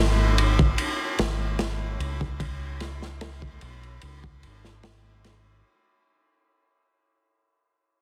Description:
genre	trip hop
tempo	74 BPM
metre	4/4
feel	straight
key	unclear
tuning	A4 = 439 Hz
part	deep dub fingered electric bass	bass	0.0-5.6 s	Ab1 to Db2	-30 LUFS	equal	none
part	crunchy breakbeat drum kit	drums	0.4-5.4 s	kick drum, ride cymbal, snare drum	-27 LUFS	equal	none
room	light reverb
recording	heavily compressed radio sound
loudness	-26 LUFS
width	mono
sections	0.0-5.6 A section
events	fade-out 0.0-5.6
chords	none

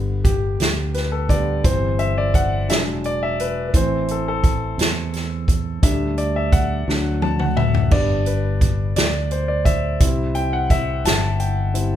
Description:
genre	slow gospel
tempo	57 BPM (dotted quarters)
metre	6/8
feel	straight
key	G major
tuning	A4 = 440 Hz
part	warm grand piano	accompaniment	0.0-12.0 s	D3 to A5	-23 LUFS	left 1 dB	none
part	fingered electric bass	bass	0.0-12.0 s	E1 to E2	-23 LUFS	equal	none
part	swinging big-band drum kit	drums	0.2-11.9 s	hi-hat, kick drum, snare drum, splash cymbal, toms	-19 LUFS	equal	none
room	light reverb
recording	band playing live in one room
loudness	-17 LUFS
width	side -11 dB against mid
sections	0.0-12.0 A section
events	grand piano solo 0.0-12.0; drum fill 6.9-7.9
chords	0.0 G; 1.6 C/G; 2.7 E7; 3.7 Am; 5.8 Dsus4; 6.9 D; 7.9 G; 10.0 C

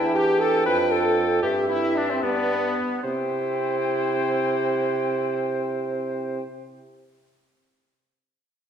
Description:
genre	quick classical-period movement for wind quintet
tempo	75 BPM (dotted quarters)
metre	6/8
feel	straight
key	C major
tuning	A4 = 442 Hz
part	silver concert flute	melody	0.0-6.4 s	D5 to G5	-30 LUFS	left 6 dB	none
part	warm oboe	second line	0.0-6.4 s	B3 to C5	-30 LUFS	left 3 dB	none
part	clear French horn	accompaniment	0.0-6.4 s	B3 to B4	-27 LUFS	right 1 dB	none
part	mellow clarinet	accompaniment	0.0-6.4 s	C4 to E4	-33 LUFS	right 4 dB	none
part	dark bassoon	bass	0.0-6.4 s	E2 to C3	-25 LUFS	right 2 dB	none
room	wet recital hall reverb, RT60 1.6 s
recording	recorded in a church or concert hall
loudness	-21 LUFS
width	side -8 dB against mid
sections	0.0-3.0 A section; 3.0-6.3 B section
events	slowing down 0.0-3.0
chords	0.0 Em7; 0.7 Dm/F; 1.4 C/G; 2.2 G; 3.0 C

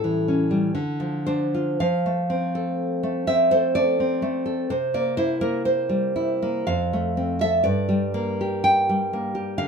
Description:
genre	romantic piece for solo classical guitar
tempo	54-66 BPM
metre	3/4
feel	rubato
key	unclear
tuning	A4 = 440 Hz
part	nylon-string guitar	solo	0.0-9.7 s	F2 to G5	-21 LUFS	equal	none
room	light reverb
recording	minimal, uncompressed stereo recording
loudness	-20 LUFS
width	side -6 dB against mid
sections	0.0-9.7 A section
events	none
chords	0.0 A7; 0.7 Dm; 1.8 F; 4.7 C7; 6.7 F; 7.6 Gm

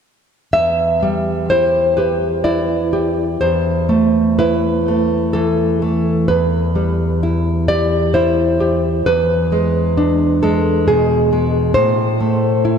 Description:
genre	romantic piece for solo classical guitar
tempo	60-69 BPM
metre	3/4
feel	rubato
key	E minor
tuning	A4 = 444 Hz
part	nylon-string guitar	solo	0.5-12.8 s	E2 to E5	-13 LUFS	equal	diffuse ambient delay
room	wet lush hall reverb, RT60 2.9 s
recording	dreamy mix soaked in reverb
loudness	-14 LUFS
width	side -7 dB against mid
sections	0.5-12.8 A section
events	none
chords	0.5 Em; 3.4 Am/E; 6.3 Em; 9.0 E7; 11.8 Am

